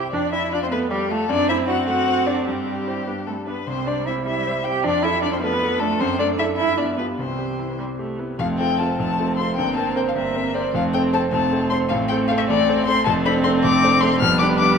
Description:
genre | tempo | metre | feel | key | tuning
quick classical-period movement for piano quartet | 103 BPM (dotted quarters) | 6/8 | rubato | C major, F major from 8.4 s | A4 = 440 Hz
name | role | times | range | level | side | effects
muted violin | melody | 0.0-14.8 s | G4 to F6 | -23 LUFS | left 6 dB | none
muted cello | second line | 0.0-14.8 s | G3 to G4 | -25 LUFS | right 6 dB | none
clear concert grand piano | accompaniment | 0.0-14.8 s | F1 to D5 | -24 LUFS | equal | none
muted viola | accompaniment | 0.1-14.8 s | D3 to E4 | -26 LUFS | right 1 dB | none
room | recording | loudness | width
wet recital hall reverb, RT60 1.6 s | minimal, uncompressed stereo recording | -18 LUFS | side -6 dB against mid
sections
0.0-8.4 A section; 8.4-14.8 B section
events
none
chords
0.1 Dm/F; 1.3 D7/F#; 2.5 C/G; 3.1 G; 3.7 C; 4.8 Dm/F; 6.0 D/F#; 6.6 G7; 7.2 C; 8.4 F; 9.6 C7/G; 10.7 F; 11.9 Amadd11; 13.1 Dm7/F; 14.2 G7/F

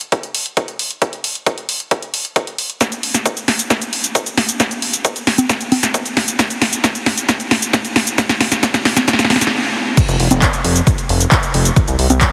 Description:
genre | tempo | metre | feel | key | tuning
uplifting trance | 134 BPM | 4/4 | straight | unclear | A4 = 440 Hz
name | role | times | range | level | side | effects
punchy analog drum machine | drums | 0.0-12.3 s | congas, crash cymbal, handclaps, hi-hat, shaker, snare drum | -18 LUFS | equal | sidechain pumping on hats, sidechain pumping on perc, sidechain pumping on cymbals
electronic kick drum | drums | 0.1-12.3 s | none | -19 LUFS | equal | overdrive, high-pass filter on kick, high-pass filter on room
fat analog bass | bass | 10.1-12.3 s | F1 to C2 | -17 LUFS | equal | sidechain pumping
room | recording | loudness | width
moderate huge ambient reverb, RT60 4.7 s | heavily compressed radio sound | -16 LUFS | mono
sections
0.0-10.0 A section; 10.0-12.3 B section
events
build-up 0.0-10.0; drum fill 2.8-9.5; stop 9.5-10.0; drop 10.0-12.3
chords
none

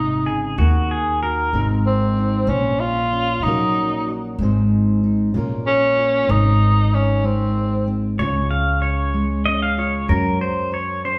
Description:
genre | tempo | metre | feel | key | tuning
acoustic folk duo or small band | 63 BPM (dotted quarters) | 6/8 | straight | Db major | A4 = 440 Hz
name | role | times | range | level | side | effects
warm tenor saxophone | melody | 0.0-8.0 s | C4 to F4 | -22 LUFS | equal | none
fingerpicked steel-string acoustic guitar | accompaniment | 0.0-11.2 s | Ab2 to C5 | -24 LUFS | equal | none
upright bass | bass | 0.0-11.2 s | Ab1 to Gb2 | -24 LUFS | equal | none
pedal steel guitar | second line | 0.3-1.7, 8.2-11.2 s | Gb4 to F5 | -24 LUFS | equal | none
room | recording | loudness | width
wet large studio reverb, RT60 1.3 s | band playing live in one room | -19 LUFS | mono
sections
0.0-8.2 A section; 8.2-11.2 B section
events
pedal steel guitar solo 8.2-11.2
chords
0.0 Ab; 0.6 Ebm; 1.5 Abadd9; 2.5 Bbmadd9; 3.4 Gb/Bb; 4.4 Ab; 5.3 Bbm; 6.3 Abadd9; 8.2 Db; 10.1 Gb

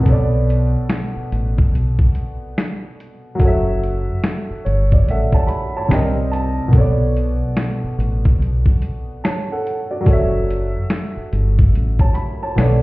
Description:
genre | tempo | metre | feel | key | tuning
lo-fi hip hop | 72 BPM | 4/4 | swing 64% on 16ths | B minor | A4 = 440 Hz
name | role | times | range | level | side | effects
dark upright piano | accompaniment | 0.0-12.8 s | B2 to B5 | -21 LUFS | right 1 dB | cassette tape
deep dub fingered electric bass | bass | 0.1-12.8 s | F#1 to C2 | -18 LUFS | equal | none
boom bap sampler-style drum kit | drums | 0.1-12.8 s | hi-hat, kick drum, snare drum | -16 LUFS | equal | none
room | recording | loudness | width
light reverb | heard muffled through a wall, cassette tape, stone room reverb, EQ | -15 LUFS | side -20 dB against mid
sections
0.0-12.8 A section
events
none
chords
0.1 Bm9; 3.4 F#m7; 5.9 Cm9; 6.7 Bm9; 10.1 F#m7

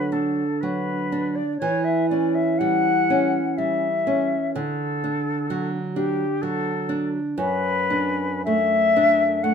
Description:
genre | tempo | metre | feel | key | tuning
romantic duo for flute and classical guitar | 53-65 BPM | 3/4 | rubato | D major | A4 = 440 Hz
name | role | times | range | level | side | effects
concert flute | melody | 0.0-9.5 s | G4 to F#5 | -23 LUFS | left 4 dB | none
nylon-string guitar | accompaniment | 0.0-9.5 s | F#2 to D4 | -23 LUFS | right 2 dB | none
room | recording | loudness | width
light reverb | minimal, uncompressed stereo recording | -20 LUFS | side -7 dB against mid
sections
0.0-9.5 A section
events
none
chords
0.0 D; 1.6 Em69; 4.5 D; 7.4 D/F#

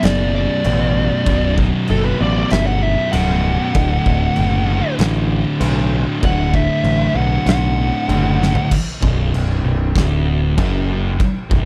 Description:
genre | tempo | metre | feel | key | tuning
stoner and doom metal | 97 BPM | 4/4 | straight | B minor | A4 = 440 Hz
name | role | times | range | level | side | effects
fuzz lead guitar | melody | 0.0-8.7 s | A4 to F#5 | -24 LUFS | equal | distortion, slapback echo
thick fuzz guitar | riff | 0.0-11.7 s | B1 to D3 | -24 LUFS | equal | distortion
thick fuzz guitar | riff | 0.0-8.7 s | B1 to D3 | -24 LUFS | equal | distortion
growling picked electric bass | bass | 0.0-11.7 s | B0 to B1 | -21 LUFS | equal | overdrive
oversized low-tuned drum kit | drums | 0.0-11.7 s | crash cymbal, kick drum, snare drum, toms | -24 LUFS | equal | none
room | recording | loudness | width
little or no reverb | none | -17 LUFS | mono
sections
0.0-8.7 A section; 8.7-11.7 B section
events
lead electric guitar solo 0.0-8.7; drum fill 8.4-8.7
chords
0.0 Bm; 3.8 D; 8.7 Bm

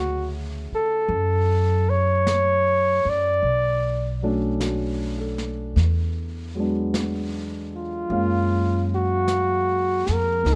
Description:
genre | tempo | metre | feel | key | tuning
jazz ballad | 51 BPM | 4/4 | swing 69% on 8ths | unclear | A4 = 440 Hz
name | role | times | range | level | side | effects
mellow flugelhorn | melody | 0.0-10.6 s | E#4 to D5 | -24 LUFS | equal | plate reverb
warm concert grand piano | accompaniment | 0.0-10.6 s | C#3 to E#5 | -31 LUFS | equal | none
upright bass | bass | 0.0-10.6 s | B1 to F#2 | -27 LUFS | equal | none
jazz brush drum kit | drums | 1.1-10.6 s | brushed snare drum, hi-hat, snare drum | -37 LUFS | equal | none
room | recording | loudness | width
light reverb | dark, warm production | -23 LUFS | mono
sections
0.0-10.6 A section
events
none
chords
0.0 Dmaj9; 3.4 Bm7; 5.8 E9; 8.1 F#maj9

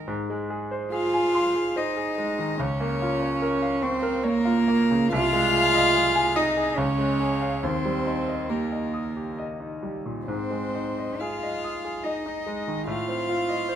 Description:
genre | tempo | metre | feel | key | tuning
classical, slow romantic movement for piano trio | 70 BPM | 3/4 | uneven beats, rubato | Ab major | A4 = 440 Hz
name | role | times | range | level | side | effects
warm cello | second line | 0.0-13.8 s | Bb3 to F4 | -25 LUFS | right 2 dB | none
bright concert grand piano | accompaniment | 0.0-13.8 s | C2 to Eb6 | -28 LUFS | equal | none
warm violin | melody | 0.9-13.8 s | Bb4 to F5 | -30 LUFS | left 7 dB | none
room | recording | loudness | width
moderate stone room reverb, RT60 0.9 s | close, detailed microphones | -23 LUFS | side -10 dB against mid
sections
0.1-13.8 A section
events
none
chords
0.1 Ab; 2.6 Bbm/Db; 5.1 Ab/C; 6.8 Db; 7.6 Eb; 10.3 Ab; 12.9 F7/A

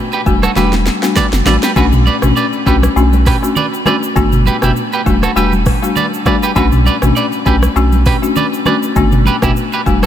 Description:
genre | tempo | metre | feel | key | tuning
afrobeats | 100 BPM | 4/4 | swing 55% on 16ths | B minor | A4 = 439 Hz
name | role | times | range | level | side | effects
folk marimba with medium mallets | accompaniment | 0.0-10.1 s | G3 to F#4 | -15 LUFS | left 4 dB | none
electric guitar at the edge of break-up | riff | 0.1-10.1 s | E4 to D5 | -18 LUFS | right 5 dB | ping-pong delay
afro-pop drum kit | drums | 0.1-10.1 s | hi-hat, kick drum, rim click, shaker, snare drum, toms | -17 LUFS | right 1 dB | none
saturated sub bass | bass | 0.3-10.1 s | E1 to B1 | -14 LUFS | equal | none
congas | percussion | 0.4-10.1 s | none | -24 LUFS | right 4 dB | none
room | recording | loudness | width
moderate huge ambient reverb, RT60 7.9 s | dreamy mix soaked in reverb | -10 LUFS | side -10 dB against mid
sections
0.0-10.1 A section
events
drum fill 0.6-1.8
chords
0.3 Em11; 1.8 Bm7; 4.2 Gmaj7; 5.1 Em11; 6.6 Bm7; 9.0 Gmaj7

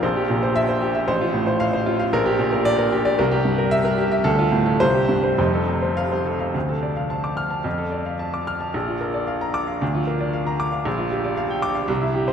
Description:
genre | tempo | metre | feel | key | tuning
classical, virtuoso piano study | 101-117 BPM | 2/4 | rubato | F major, D minor from 6.5 s | A4 = 440 Hz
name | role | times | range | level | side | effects
clear baby grand piano | solo | 0.0-12.3 s | F1 to F6 | -19 LUFS | equal | none
room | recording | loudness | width
wet cathedral reverb, RT60 5.8 s | in a vast, echoing space | -19 LUFS | side -7 dB against mid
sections
0.0-6.5 A section; 6.5-12.3 B section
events
none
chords
0.0 C7/Bb; 1.1 F/A; 2.1 Gm/Bb; 3.2 C7; 4.2 Dm; 4.8 C5; 5.4 F; 6.5 Dm; 7.7 Dm/F; 8.7 Bb; 9.8 Bb/D; 10.9 Gm7/Bb

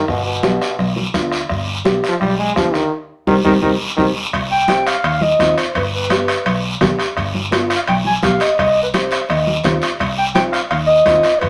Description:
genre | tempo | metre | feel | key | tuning
latin, cumbia | 169 BPM | 4/4 | straight | C harmonic minor | A4 = 439 Hz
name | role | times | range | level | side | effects
bright trombone | second line | 0.0-4.1 s | B2 to Ab3 | -20 LUFS | equal | none
fingered electric bass | bass | 0.1-11.5 s | G1 to Eb2 | -26 LUFS | equal | none
bombo | percussion | 0.1-11.5 s | none | -27 LUFS | equal | none
congas | percussion | 0.1-11.5 s | none | -25 LUFS | equal | none
guiro | percussion | 0.1-11.5 s | none | -27 LUFS | equal | none
nylon-string guitar | accompaniment | 0.4-11.3 s | G3 to G4 | -22 LUFS | equal | none
timbales | percussion | 4.3-11.5 s | none | -26 LUFS | equal | none
dark clarinet | melody | 4.5-11.5 s | B4 to Ab5 | -18 LUFS | equal | none
room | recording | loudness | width
wet studio reverb, RT60 0.6 s | none | -17 LUFS | mono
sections
0.0-4.3 A section; 4.3-11.5 B section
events
trombone solo 0.0-4.3; band accent 2.9-4.3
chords
0.1 G; 2.9 Cm; 5.8 G; 8.6 Cm

